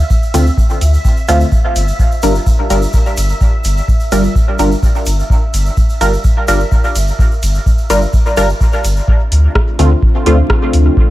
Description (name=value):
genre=dub techno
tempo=127 BPM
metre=4/4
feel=straight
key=unclear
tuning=A4 = 439 Hz
part: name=soft dub sub bass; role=bass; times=0.0-10.9 s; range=G1 to D2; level=-12 LUFS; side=equal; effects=sidechain pumping
part: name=bubbling stepped-filter texture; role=texture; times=0.0-9.1 s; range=E5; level=-27 LUFS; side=right 1 dB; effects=chorus, built-in reverb, sidechain pumping
part: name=electronic kick drum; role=drums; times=0.1-11.1 s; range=none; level=-12 LUFS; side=equal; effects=none
part: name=tube shaker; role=percussion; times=0.1-9.1 s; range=none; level=-28 LUFS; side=right 3 dB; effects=none
part: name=filtered dub chord stab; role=stabs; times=0.3-10.4 s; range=D3 to Bb4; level=-16 LUFS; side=equal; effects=chorus, phaser, sidechain pumping, dub echo
part: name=deep house drum kit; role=drums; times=0.3-10.8 s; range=hi-hat, rim click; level=-21 LUFS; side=equal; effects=none
part: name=deep dark ambient pad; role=sustained chords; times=9.5-11.1 s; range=A3 to F4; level=-19 LUFS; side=left 1 dB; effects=chorus, built-in reverb, sidechain pumping
room=digital ambience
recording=vinyl crackle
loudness=-10 LUFS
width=side -16 dB against mid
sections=0.0-9.1 A section; 9.1-11.1 A section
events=none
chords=0.0 Dm7; 1.5 Gm7; 9.1 Dm7